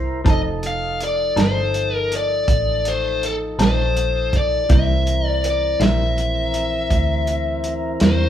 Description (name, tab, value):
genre	slow blues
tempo	54 BPM (dotted quarters)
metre	12/8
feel	straight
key	unclear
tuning	A4 = 440 Hz
part	tonewheel organ	sustained chords	0.0-8.3 s	E3 to C5	-28 LUFS	equal	slow rotary speaker
part	vintage muted fingered electric bass	bass	0.0-8.3 s	F1 to E2	-23 LUFS	right 1 dB	none
part	semi-hollow electric guitar	accompaniment	0.2-8.2 s	C3 to A4	-25 LUFS	left 2 dB	tremolo
part	biting lead guitar	melody	0.3-8.3 s	A4 to F5	-21 LUFS	left 3 dB	overdrive
part	warm soul drum kit	drums	0.3-8.2 s	hi-hat, kick drum, snare drum	-20 LUFS	right 1 dB	none
room	moderate large studio reverb, RT60 1.1 s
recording	band playing live in one room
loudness	-17 LUFS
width	side -10 dB against mid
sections	0.0-8.3 A section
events	none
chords	0.2 F7; 4.7 C7